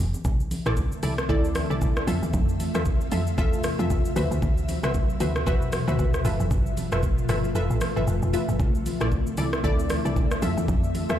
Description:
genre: amapiano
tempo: 115 BPM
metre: 4/4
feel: swing 58% on 16ths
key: C major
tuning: A4 = 440 Hz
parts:
  - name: woody log drum bass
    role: bass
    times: 0.0-11.2 s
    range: F1 to F2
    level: -26 LUFS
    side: equal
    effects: none
  - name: afro-pop drum kit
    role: drums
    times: 0.1-11.2 s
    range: hi-hat, kick drum, rim click, shaker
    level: -27 LUFS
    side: equal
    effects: none
  - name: congas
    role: percussion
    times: 0.1-11.1 s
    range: none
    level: -33 LUFS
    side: right 1 dB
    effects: none
  - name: ethereal airy pad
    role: sustained chords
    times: 0.9-11.2 s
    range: B2 to E5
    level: -31 LUFS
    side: equal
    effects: ensemble chorus, built-in reverb, sidechain pumping
  - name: punchy chord stab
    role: stabs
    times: 0.7-11.2 s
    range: E4 to E5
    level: -30 LUFS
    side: left 1 dB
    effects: chorus, tape echo
room: light reverb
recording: played on a big sound system in a bare room, large studio reverb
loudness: -22 LUFS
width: side -11 dB against mid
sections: 0.0-11.2 A section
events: kick muted 7.6-8.6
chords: 0.2 C69; 2.1 Fmaj7; 4.2 D13; 6.2 G13; 8.6 C69; 10.4 Fmaj7

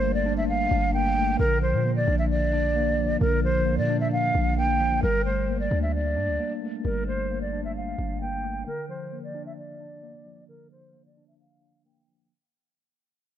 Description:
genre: hip hop, trap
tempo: 132 BPM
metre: 4/4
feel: half-time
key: unclear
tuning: A4 = 443 Hz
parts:
  - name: mellow hollow concert flute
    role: melody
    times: 0.0-12.3 s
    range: Bb4 to G5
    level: -27 LUFS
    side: right 1 dB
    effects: low-pass filter
  - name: mellow tine electric piano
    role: accompaniment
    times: 0.0-12.3 s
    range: D3 to D4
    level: -29 LUFS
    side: left 1 dB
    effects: medium stereo tremolo, low-pass filter
  - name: hard-hitting 808-style bass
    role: bass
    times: 0.0-8.6 s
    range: G1 to Bb2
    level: -27 LUFS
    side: equal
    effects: none
room: light reverb, studio reverb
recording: none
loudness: -22 LUFS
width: side -10 dB against mid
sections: 0.0-5.0 A section; 5.0-12.3 B section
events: fade-out 5.0-12.3; filter sweep 5.0-12.3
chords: 0.0 Gmadd9; 1.4 Bb; 5.0 Gmadd9; 8.7 Bb

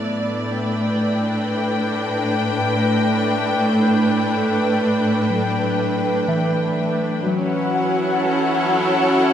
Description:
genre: ambient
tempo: 61 BPM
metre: 4/4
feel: straight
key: unclear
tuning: A4 = 440 Hz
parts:
  - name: dark studio string section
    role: sustained chords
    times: 0.0-9.3 s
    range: A2 to G5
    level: -18 LUFS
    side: equal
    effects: shimmer reverb
  - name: muted felt-like synth keys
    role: arpeggios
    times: 0.0-9.3 s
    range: E3 to F#5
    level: -26 LUFS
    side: left 2 dB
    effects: chorus, diffuse ambient delay
room: wet lush hall reverb, RT60 2.5 s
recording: none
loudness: -17 LUFS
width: side -9 dB against mid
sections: 0.0-9.3 A section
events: fade-in on synth keys 0.0-9.3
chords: 0.0 A9sus4; 7.3 F#m7

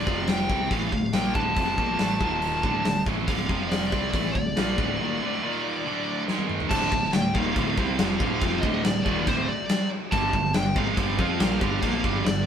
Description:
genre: heavy metal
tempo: 140 BPM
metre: 4/4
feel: straight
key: D phrygian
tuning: A4 = 440 Hz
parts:
  - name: high-gain lead guitar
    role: melody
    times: 0.0-12.5 s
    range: C5 to A5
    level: -29 LUFS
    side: left 1 dB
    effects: distortion
  - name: distorted electric guitar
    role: riff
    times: 0.0-12.4 s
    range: D2 to F4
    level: -32 LUFS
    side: left 6 dB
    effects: distortion
  - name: tight distorted guitar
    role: riff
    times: 0.0-12.4 s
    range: D2 to F4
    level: -30 LUFS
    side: right 5 dB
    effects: distortion
  - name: modern bright picked electric bass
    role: bass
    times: 0.0-12.5 s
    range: D1 to F2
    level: -32 LUFS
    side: equal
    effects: none
  - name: big rock drum kit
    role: drums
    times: 0.1-12.4 s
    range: crash cymbal, hi-hat, kick drum, snare drum, toms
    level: -26 LUFS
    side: equal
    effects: none
  - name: raw garage guitar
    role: riff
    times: 6.7-12.4 s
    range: D2 to F4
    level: -32 LUFS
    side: equal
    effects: overdrive
room: moderate stone room reverb, RT60 1.0 s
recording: band playing live in one room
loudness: -22 LUFS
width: side -8 dB against mid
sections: 0.0-6.7 A section; 6.7-12.5 B section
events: break 5.0-6.7; drum fill 6.3-6.7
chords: 0.1 F5; 0.5 Dm; 2.2 Eb5; 2.6 D5; 3.5 F5; 3.9 Dm; 5.4 Eb5; 5.8 D5; 6.3 G#5; 6.7 Dm; 10.1 G5

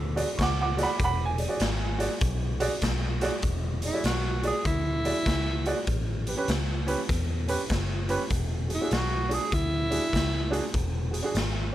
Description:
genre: electric blues shuffle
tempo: 98 BPM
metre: 4/4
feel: swing 65% on 8ths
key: E mixolydian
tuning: A4 = 440 Hz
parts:
  - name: vintage muted fingered electric bass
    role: bass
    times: 0.0-11.7 s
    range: E1 to E2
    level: -30 LUFS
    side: left 1 dB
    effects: none
  - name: warm upright piano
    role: accompaniment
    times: 0.2-11.7 s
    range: C#4 to D6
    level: -30 LUFS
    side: right 3 dB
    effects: plate reverb
  - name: raw garage drum kit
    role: drums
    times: 0.2-11.5 s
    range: hi-hat, kick drum, snare drum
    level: -29 LUFS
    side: equal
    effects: none
  - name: breathy tenor saxophone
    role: melody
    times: 3.9-10.7 s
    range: E4 to G#4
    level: -29 LUFS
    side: right 1 dB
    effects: plate reverb
room: light reverb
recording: none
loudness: -25 LUFS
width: side -13 dB against mid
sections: 0.0-3.4 A section; 3.4-11.7 B section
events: none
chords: 0.0 E9; 5.9 A9; 8.3 E9

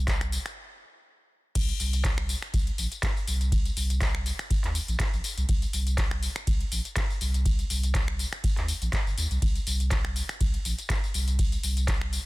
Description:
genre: acid house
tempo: 122 BPM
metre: 4/4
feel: swing 54% on 16ths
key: C minor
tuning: A4 = 435 Hz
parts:
  - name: warm sub bass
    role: bass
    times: 0.0-12.2 s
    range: G1 to Eb2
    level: -28 LUFS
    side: equal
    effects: sidechain pumping
  - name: booming analog drum machine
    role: drums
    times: 0.1-12.2 s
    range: crash cymbal, finger snaps, handclaps, hi-hat, ride cymbal, tambourine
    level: -32 LUFS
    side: left 1 dB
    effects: soft clipping on snare
  - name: electronic kick drum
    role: drums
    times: 0.1-12.0 s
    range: none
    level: -28 LUFS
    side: equal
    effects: none
room: little or no reverb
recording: dense, heavily limited modern master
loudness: -25 LUFS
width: side -20 dB against mid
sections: 0.0-1.6 A section; 1.6-12.3 B section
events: stop 0.6-1.6; drop 1.6-12.3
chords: none

